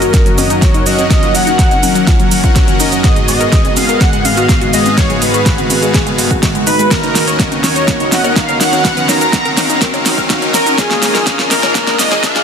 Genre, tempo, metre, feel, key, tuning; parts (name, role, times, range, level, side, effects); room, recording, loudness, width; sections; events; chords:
progressive house; 124 BPM; 4/4; straight; Eb minor; A4 = 440 Hz
wide unison lead; melody; 0.0-12.4 s; Ab4 to Bb5; -17 LUFS; right 1 dB; lush chorus, sidechain pumping, digital delay
lush unison pad; sustained chords; 0.0-12.4 s; Eb2 to Ab4; -21 LUFS; equal; chorus, sidechain pumping
analog pluck; arpeggios; 0.0-12.4 s; Gb3 to Db5; -19 LUFS; left 2 dB; chorus, phaser, sidechain pumping, digital delay
soft supersaw; stabs; 0.0-12.4 s; Ab2 to Gb5; -18 LUFS; left 2 dB; sidechain pumping, digital delay
pop drum kit; drums; 0.0-12.4 s; hi-hat, shaker, snare drum; -16 LUFS; right 1 dB; studio reverb
riser; sound effects; 4.3-12.4 s; -24 LUFS; equal
electronic kick drum; drums; 0.1-12.3 s; -14 LUFS; equal; overdrive, studio reverb
congas and bongos; percussion; 0.4-12.2 s; -25 LUFS; left 2 dB; sidechain pumping on perc, studio reverb
light reverb; dense, heavily limited modern master, high-pass filter; -9 LUFS; side -7 dB against mid
0.0-12.4 A section
build-up 0.0-12.4; drum fill 0.0-12.4; filter sweep 0.0-12.4; riser 4.3-12.4
0.0 Gb6; 3.0 Abm7; 6.9 Ebm7; 10.8 Bb7sus4